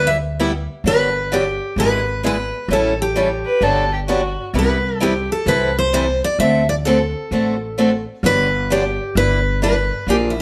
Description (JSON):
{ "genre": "acoustic string swing (jazz manouche)", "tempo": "130 BPM", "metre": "4/4", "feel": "swing 65% on 8ths", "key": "G major", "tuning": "A4 = 440 Hz", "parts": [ { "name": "picked steel-string acoustic guitar", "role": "melody", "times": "0.0-10.4 s", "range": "E4 to E5", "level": "-22 LUFS", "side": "equal", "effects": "none" }, { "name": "picked steel-string acoustic guitar", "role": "accompaniment", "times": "0.0-10.3 s", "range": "C3 to B4", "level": "-22 LUFS", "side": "equal", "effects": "none" }, { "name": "upright bass", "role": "bass", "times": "0.0-10.4 s", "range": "G1 to D2", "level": "-25 LUFS", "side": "equal", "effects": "none" }, { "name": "dark violin", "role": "second line", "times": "3.5-4.4 s", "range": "F#4 to B4", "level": "-22 LUFS", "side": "equal", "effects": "none" } ], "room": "moderate stone room reverb, RT60 0.9 s", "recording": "band playing live in one room", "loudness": "-18 LUFS", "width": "mono", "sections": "0.8-10.4 A section", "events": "none", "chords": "0.0 G6; 0.8 Gmaj7; 1.8 E7/G#; 2.7 A7; 3.6 Gmaj7; 4.5 Cmaj7; 5.5 Am7/C; 6.4 D7; 8.2 Gmaj7; 9.2 Em7/G", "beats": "0.38 | 0.84 1.31 1.77 2.23 | 2.69 3.15 3.62 4.08 | 4.54 5.00 5.46 5.93 | 6.39 6.85 7.31 7.78 | 8.24 8.70 9.16 9.62 | 10.08" }